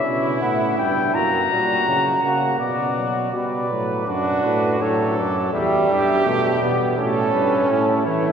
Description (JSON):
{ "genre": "classical, imitative canzona for brass ensemble", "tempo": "83 BPM", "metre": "4/4", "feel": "straight", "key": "D major from 4.1 s", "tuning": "A4 = 439 Hz", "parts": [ { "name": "mellow trumpet", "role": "melody", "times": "0.0-8.3 s", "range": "A4 to A#5", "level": "-23 LUFS", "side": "left 3 dB", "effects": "none" }, { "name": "mellow trumpet", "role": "second line", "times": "0.0-8.3 s", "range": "E4 to B4", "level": "-24 LUFS", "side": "right 3 dB", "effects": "none" }, { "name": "bright trombone", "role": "accompaniment", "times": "0.0-8.3 s", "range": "F#3 to D4", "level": "-23 LUFS", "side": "right 1 dB", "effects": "none" }, { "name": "mellow euphonium", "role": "bass", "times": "0.0-8.3 s", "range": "E2 to E3", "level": "-24 LUFS", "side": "right 1 dB", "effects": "none" } ], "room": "wet cathedral reverb, RT60 5.2 s", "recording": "recorded in a church or concert hall", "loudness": "-17 LUFS", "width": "side -7 dB against mid", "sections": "0.0-4.1 A section; 4.1-8.3 B section", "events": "none", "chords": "0.0 C#dim; 1.1 F#; 2.6 Bm; 4.1 D/F#; 5.5 Em; 7.0 A", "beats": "0.42 | 1.14 1.87 2.60 3.33 | 4.07 4.80 5.53 6.25 | 6.97 7.69" }